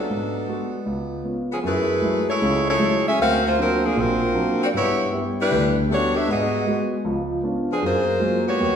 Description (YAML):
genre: jazz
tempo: 155 BPM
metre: 4/4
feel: swing 66% on 8ths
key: unclear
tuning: A4 = 440 Hz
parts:
  - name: warm saxophone section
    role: melody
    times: 0.0-8.8 s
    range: E#3 to E#5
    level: -21 LUFS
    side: equal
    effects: none
  - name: warm concert grand piano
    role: accompaniment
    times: 0.1-8.8 s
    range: A#1 to F#4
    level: -23 LUFS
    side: equal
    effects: none
room: wet recital hall reverb, RT60 1.4 s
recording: recorded in a church or concert hall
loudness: -19 LUFS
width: side -8 dB against mid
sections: 0.0-1.6 A section; 1.6-8.8 B section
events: none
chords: 0.1 G#m7b5; 0.9 C#7; 1.6 F#m9; 3.2 D7alt; 4.7 G6; 6.3 G#m7; 7.0 C#7b9; 7.8 F#maj9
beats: | 0.09 0.48 0.86 1.25 | 1.64 2.02 2.41 2.80 | 3.18 3.57 3.95 4.34 | 4.72 5.11 5.50 5.88 | 6.27 6.66 7.04 7.43 | 7.81 8.20 8.59